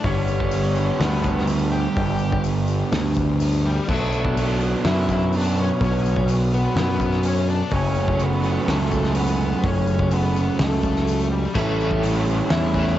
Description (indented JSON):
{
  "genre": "rock, shoegaze and dream pop",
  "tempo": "125 BPM",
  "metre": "4/4",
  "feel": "straight",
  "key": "unclear",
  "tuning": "A4 = 440 Hz",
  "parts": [
    { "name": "octave-fuzz lead guitar", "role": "melody", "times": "0.0-13.0 s", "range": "G3 to G4", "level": "-28 LUFS", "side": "left 3 dB", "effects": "distortion, cassette tape, analog delay" },
    { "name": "fuzz guitar", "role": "riff", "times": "0.0-13.0 s", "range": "F#2 to B3", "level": "-30 LUFS", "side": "left 10 dB", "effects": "distortion, ensemble chorus, cassette tape" },
    { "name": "overdriven electric guitar", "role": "riff", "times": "0.0-13.0 s", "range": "F#2 to E4", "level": "-24 LUFS", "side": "right 5 dB", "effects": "reverse reverb, cassette tape" },
    { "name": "growling fingered electric bass", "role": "bass", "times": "0.0-13.0 s", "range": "F#1 to F#2", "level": "-23 LUFS", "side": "equal", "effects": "overdrive" },
    { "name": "loose indie drum kit", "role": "drums", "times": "0.0-12.9 s", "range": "crash cymbal, hi-hat, kick drum, snare drum", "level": "-28 LUFS", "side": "equal", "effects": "none" },
    { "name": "tambourine", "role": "percussion", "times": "0.0-12.9 s", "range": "none", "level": "-45 LUFS", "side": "left 13 dB", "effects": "none" },
    { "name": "overdriven electric guitar", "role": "riff", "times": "11.5-13.0 s", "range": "A2 to A3", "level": "-28 LUFS", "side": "left 2 dB", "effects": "tremolo, cassette tape" }
  ],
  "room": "light reverb",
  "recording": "home recording on cassette, nothing above 7.8 kHz",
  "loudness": "-18 LUFS",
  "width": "side -12 dB against mid",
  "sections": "0.0-13.0 A section",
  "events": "none",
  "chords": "0.0 G; 3.9 Bm; 7.7 F#m; 11.6 A7"
}